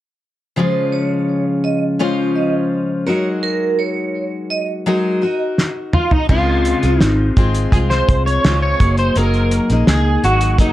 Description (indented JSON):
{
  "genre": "indie pop, bedroom pop",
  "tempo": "84 BPM",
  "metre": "4/4",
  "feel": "straight",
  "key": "Db major",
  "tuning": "A4 = 441 Hz",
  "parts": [
    { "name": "vibraphone with hard mallets", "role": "second line", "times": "0.6-5.4 s", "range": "Bb4 to F5", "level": "-22 LUFS", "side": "right 5 dB", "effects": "ensemble chorus, tape echo" },
    { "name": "picked steel-string acoustic guitar", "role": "accompaniment", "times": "0.6-10.7 s", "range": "Db3 to C5", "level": "-18 LUFS", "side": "left 2 dB", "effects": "wide subtle chorus, warbly pitch drift" },
    { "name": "cloth-damped thuddy drum kit", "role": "drums", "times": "5.6-10.7 s", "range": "crash cymbal, hi-hat, kick drum, snare drum, toms", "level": "-16 LUFS", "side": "equal", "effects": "none" },
    { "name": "electric guitar at the edge of break-up", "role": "melody", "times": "5.9-10.7 s", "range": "Eb4 to Db5", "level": "-18 LUFS", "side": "equal", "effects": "ensemble chorus, tape echo" },
    { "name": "vintage muted fingered electric bass", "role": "bass", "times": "6.3-10.7 s", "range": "Gb1 to Db2", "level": "-17 LUFS", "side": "equal", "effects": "none" }
  ],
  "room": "moderate studio reverb, RT60 0.5 s",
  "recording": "none",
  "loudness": "-14 LUFS",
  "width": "side -14 dB against mid",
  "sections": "0.6-6.3 A section; 6.3-10.7 B section",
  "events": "drum fill 5.6-6.3",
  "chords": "0.6 Dbmaj7; 3.1 Gb69; 6.3 Dbmaj7; 8.8 Gb69"
}